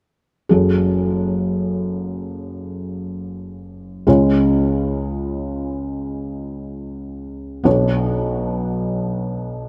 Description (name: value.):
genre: pop.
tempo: free time.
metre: none.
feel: none.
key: F# harmonic minor.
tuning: A4 = 437 Hz.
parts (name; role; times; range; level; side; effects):
felt-muted upright piano; accompaniment; 0.5-9.7 s; F#1 to C#5; -21 LUFS; equal; none.
room: moderate lush hall reverb, RT60 2.7 s.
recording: none.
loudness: -20 LUFS.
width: mono.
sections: 0.5-9.7 A section.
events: none.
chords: 0.5 F#madd9; 4.1 C#; 7.7 Bmadd9.